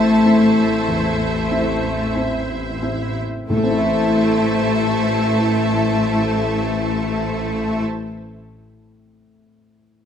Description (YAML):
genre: cinematic, emotional film score for orchestra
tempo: 46 BPM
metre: 4/4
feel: rubato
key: A minor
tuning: A4 = 439 Hz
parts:
  - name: clear symphonic violin section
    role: melody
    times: 0.0-7.8 s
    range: E5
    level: -29 LUFS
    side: right 1 dB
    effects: none
  - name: warm symphonic violin section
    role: second line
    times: 0.0-7.8 s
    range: A5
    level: -28 LUFS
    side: right 2 dB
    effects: none
  - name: felt-muted upright piano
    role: accompaniment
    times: 0.0-10.1 s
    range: E2 to E5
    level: -25 LUFS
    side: left 1 dB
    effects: none
  - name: rich symphonic viola section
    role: accompaniment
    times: 0.0-7.8 s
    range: E4 to C5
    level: -25 LUFS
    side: equal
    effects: none
  - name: warm French horn section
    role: sustained chords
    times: 0.0-7.8 s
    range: A3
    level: -22 LUFS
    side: left 4 dB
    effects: none
  - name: bright symphonic cello section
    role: bass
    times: 0.0-7.8 s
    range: A3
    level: -22 LUFS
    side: right 1 dB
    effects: none
  - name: clear symphonic double bass section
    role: bass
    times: 0.0-7.8 s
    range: A1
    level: -26 LUFS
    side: left 1 dB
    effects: none
  - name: timpani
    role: percussion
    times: 3.5-7.8 s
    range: A2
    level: -29 LUFS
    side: equal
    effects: none
room: wet stone room reverb, RT60 1.5 s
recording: none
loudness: -16 LUFS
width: side -8 dB against mid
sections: 0.0-3.5 A section; 3.5-8.7 B section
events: slowing down 0.0-3.5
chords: 0.0 Am